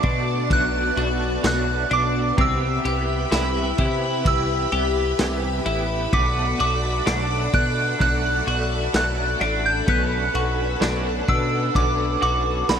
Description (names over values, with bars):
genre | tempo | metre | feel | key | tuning
dream pop | 64 BPM | 4/4 | straight | B phrygian | A4 = 440 Hz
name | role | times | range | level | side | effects
soft synth bell | melody | 0.0-12.8 s | B5 to G6 | -25 LUFS | right 2 dB | chorus, digital delay
direct-recorded clean electric guitar | accompaniment | 0.0-12.8 s | B2 to G4 | -31 LUFS | right 4 dB | tremolo, ensemble chorus
string machine, violins | sustained chords | 0.0-12.8 s | B3 to B5 | -27 LUFS | left 1 dB | ensemble chorus
twelve-string electric guitar | arpeggios | 0.0-12.8 s | B3 to G4 | -27 LUFS | left 4 dB | lush chorus, digital delay
fat analog bass | bass | 0.0-12.8 s | A1 to C3 | -25 LUFS | equal | none
vintage drum kit | drums | 0.0-12.8 s | kick drum, ride cymbal, snare drum, tambourine | -25 LUFS | equal | none
room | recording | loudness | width
moderate lush hall reverb, RT60 2.9 s | bright 1980s-style digital production | -19 LUFS | side -8 dB against mid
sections
0.0-12.8 A section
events
none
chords
0.0 Bm7; 2.4 Cmaj7; 6.1 Bm7; 9.9 Bm9